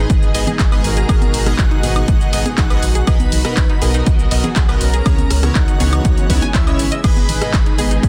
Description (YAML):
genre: progressive house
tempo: 121 BPM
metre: 4/4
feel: straight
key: G# minor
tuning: A4 = 440 Hz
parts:
  - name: muted studio string section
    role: sustained chords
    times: 0.0-8.1 s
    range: B2 to G#4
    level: -29 LUFS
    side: equal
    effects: sidechain pumping
  - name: unison pluck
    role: arpeggios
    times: 0.0-8.0 s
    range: D#4 to G#5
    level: -30 LUFS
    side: equal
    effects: sidechain pumping, dub echo
  - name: chorused polysynth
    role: stabs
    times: 0.0-8.1 s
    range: G#2 to D#5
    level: -26 LUFS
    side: equal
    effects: sidechain pumping, dub echo
  - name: round analog bass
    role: bass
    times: 0.0-8.1 s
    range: G#1 to C#2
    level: -21 LUFS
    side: equal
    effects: sidechain pumping
  - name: electronic kick drum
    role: drums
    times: 0.1-8.1 s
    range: none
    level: -18 LUFS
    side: equal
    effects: overdrive
  - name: house drum kit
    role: drums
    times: 0.1-8.1 s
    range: crash cymbal, handclaps, hi-hat, shaker, woodblock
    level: -26 LUFS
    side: equal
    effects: overdrive
  - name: electronic congas and rim click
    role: percussion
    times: 0.5-7.9 s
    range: none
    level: -26 LUFS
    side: equal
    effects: overdrive, sidechain pumping on perc, sidechain pumping on snare
  - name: soft supersaw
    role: melody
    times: 0.8-7.9 s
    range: C#4 to B4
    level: -28 LUFS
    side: equal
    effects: sidechain pumping, dub echo
  - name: airy dreamy lead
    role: second line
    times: 0.8-7.9 s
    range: E5 to B5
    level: -33 LUFS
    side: equal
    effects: chorus, sidechain pumping, dub echo
room: little or no reverb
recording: dense, heavily limited modern master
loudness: -15 LUFS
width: mono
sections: 0.0-8.1 A section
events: none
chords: 0.0 G#m; 3.1 Bmaj7; 5.1 C#m7; 7.0 G#m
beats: 0.10 0.59 | 1.09 1.59 2.08 2.58 | 3.07 3.57 4.07 4.56 | 5.06 5.55 6.05 6.54 | 7.04 7.54 8.03